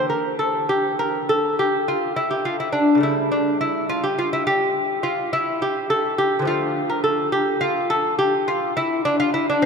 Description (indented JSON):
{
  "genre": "classical, baroque-style dance for lute",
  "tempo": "69 BPM (dotted quarters)",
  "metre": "12/8",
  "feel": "rubato",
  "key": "D minor",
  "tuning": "A4 = 439 Hz",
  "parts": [
    { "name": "lute", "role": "solo", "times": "0.0-9.7 s", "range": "C#3 to Bb4", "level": "-19 LUFS", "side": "equal", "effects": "none" }
  ],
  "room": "wet cathedral reverb, RT60 5.2 s",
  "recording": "in a vast, echoing space",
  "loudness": "-19 LUFS",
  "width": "side -5 dB against mid",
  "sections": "0.0-9.7 A section",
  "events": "none",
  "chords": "0.0 Gm13/D; 3.0 A7/C#; 6.5 Dm"
}